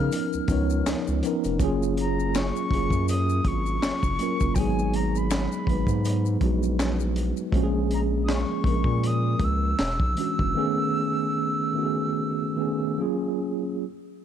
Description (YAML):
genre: R&B, neo-soul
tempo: 80 BPM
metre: 4/4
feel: swing 57% on 16ths, uneven beats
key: F# major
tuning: A4 = 440 Hz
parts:
  - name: silver concert flute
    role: melody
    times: 0.0-13.0 s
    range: G5 to E#6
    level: -30 LUFS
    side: left 1 dB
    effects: none
  - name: mellow tine electric piano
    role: accompaniment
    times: 0.0-13.9 s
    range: D#3 to C#5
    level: -26 LUFS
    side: right 1 dB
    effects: medium stereo tremolo
  - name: saturated sub bass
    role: bass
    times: 0.0-10.5 s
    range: E1 to A#2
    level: -26 LUFS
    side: equal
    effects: none
  - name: crunchy breakbeat drum kit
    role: drums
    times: 0.1-10.5 s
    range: handclaps, hi-hat, kick drum, snare drum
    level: -28 LUFS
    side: equal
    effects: none
  - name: maracas and finger snaps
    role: percussion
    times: 0.1-7.5 s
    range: none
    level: -40 LUFS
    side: left 17 dB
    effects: none
room: small room ambience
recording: dark, warm production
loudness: -22 LUFS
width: side -9 dB against mid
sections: 0.0-1.6 A section; 1.6-13.8 B section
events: slowing down 7.5-13.8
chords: 0.0 C#13; 1.6 F#maj9; 4.6 G#m7; 7.5 A#m7; 9.8 E13; 10.5 Amaj9#11; 13.0 F#maj9